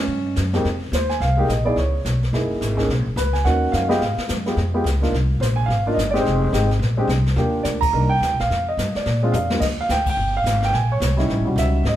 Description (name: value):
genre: jazz piano trio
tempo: 214 BPM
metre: 4/4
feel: swing 60% on 8ths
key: Eb major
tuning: A4 = 440 Hz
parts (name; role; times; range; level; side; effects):
- dark concert grand piano; melody; 0.0-12.0 s; Eb2 to Bb5; -21 LUFS; right 1 dB; none
- upright bass; bass; 0.0-12.0 s; E1 to Bb2; -21 LUFS; equal; none
- jazz brush drum kit; drums; 0.1-12.0 s; brushed snare drum, crash cymbal, hi-hat, kick drum, ride cymbal, snare drum, toms; -28 LUFS; left 1 dB; none
room: moderate stone room reverb, RT60 1.4 s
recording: band playing live in one room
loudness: -18 LUFS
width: side -12 dB against mid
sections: 0.6-9.6 A section; 9.6-12.0 B section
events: band accent 7.8, 10.0; drum fill 9.0-9.6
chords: 0.1 Eb7#9 (rootless); 0.6 Fm11; 1.8 Bsus2; 2.3 Gb13; 2.9 Bmaj9; 4.0 Db; 5.1 Cm11; 6.3 Fm7; 6.8 Bbsus2; 7.4 Ebmaj9; 7.9 Cm9; 8.5 Fsus2; 9.0 Bb; 9.6 Ebmaj9; 10.7 Bbmadd9; 11.3 A7#11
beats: 0.08 0.36 | 0.64 0.93 1.21 1.49 | 1.77 2.05 2.33 2.61 | 2.89 3.17 3.45 3.73 | 4.01 4.29 4.57 4.85 | 5.13 5.41 5.69 5.97 | 6.25 6.53 6.81 7.09 | 7.37 7.65 7.93 8.21 | 8.49 8.77 9.05 9.33 | 9.61 9.88 10.16 10.44 | 10.72 11.00 11.28 11.56 | 11.84